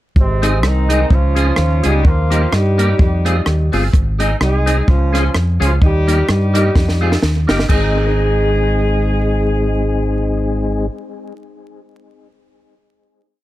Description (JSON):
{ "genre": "ska", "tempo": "128 BPM", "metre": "4/4", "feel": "swing 56% on 8ths", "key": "Ab major", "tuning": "A4 = 437 Hz", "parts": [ { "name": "mellow horn section", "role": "melody", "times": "0.2-10.9 s", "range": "C3 to Ab4", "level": "-20 LUFS", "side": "right 1 dB", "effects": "plate reverb" }, { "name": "fingered electric bass", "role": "bass", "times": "0.2-10.9 s", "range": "G1 to G2", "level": "-16 LUFS", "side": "equal", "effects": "none" }, { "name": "compact cocktail drum kit", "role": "drums", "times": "0.2-7.8 s", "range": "crash cymbal, hi-hat, kick drum, rim click, snare drum", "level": "-16 LUFS", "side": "equal", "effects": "analog delay" }, { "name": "clean electric guitar", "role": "accompaniment", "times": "0.4-11.2 s", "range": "Bb3 to Ab4", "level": "-25 LUFS", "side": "right 3 dB", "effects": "ensemble chorus, plate reverb" }, { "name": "percussive tonewheel organ", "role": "stabs", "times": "0.4-10.9 s", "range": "G3 to Ab4", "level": "-22 LUFS", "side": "left 3 dB", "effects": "chorus vibrato, fast rotary speaker, analog delay, plate reverb" } ], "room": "light reverb", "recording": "vinyl crackle", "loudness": "-13 LUFS", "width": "side -15 dB against mid", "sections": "0.2-7.7 A section; 7.7-11.4 final chord", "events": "drum fill 6.8-7.7", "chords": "0.2 Ab; 1.1 Db; 2.0 Eb; 3.0 Fm; 3.9 Ab; 4.9 Db; 5.8 Eb; 6.8 Fm; 7.2 Eb; 7.7 Ab" }